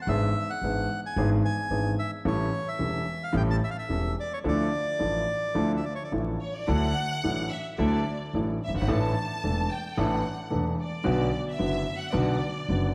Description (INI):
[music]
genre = tango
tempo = 110 BPM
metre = 4/4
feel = rubato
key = D harmonic minor, D major from 6.7 s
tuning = A4 = 442 Hz
[part]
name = bandoneon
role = melody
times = 0.0-6.1 s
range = C#5 to A5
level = -34 LUFS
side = equal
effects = none
[part]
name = warm grand piano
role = accompaniment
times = 0.1-12.9 s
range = E1 to A4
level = -31 LUFS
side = equal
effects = none
[part]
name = upright bass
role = bass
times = 0.1-12.9 s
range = E1 to D2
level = -32 LUFS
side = equal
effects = none
[part]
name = clear studio violin section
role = second line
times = 6.4-12.9 s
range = C#5 to A5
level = -36 LUFS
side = equal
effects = none
[sound]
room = wet scoring stage reverb, RT60 1.5 s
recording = vinyl crackle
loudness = -28 LUFS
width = mono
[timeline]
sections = 0.0-6.7 A section; 6.7-12.9 B section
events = violin section solo 6.7-12.9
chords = 0.1 E7/G#; 2.3 A7; 4.4 Dmadd9; 6.7 Dadd9; 8.9 Asus4; 11.1 Bm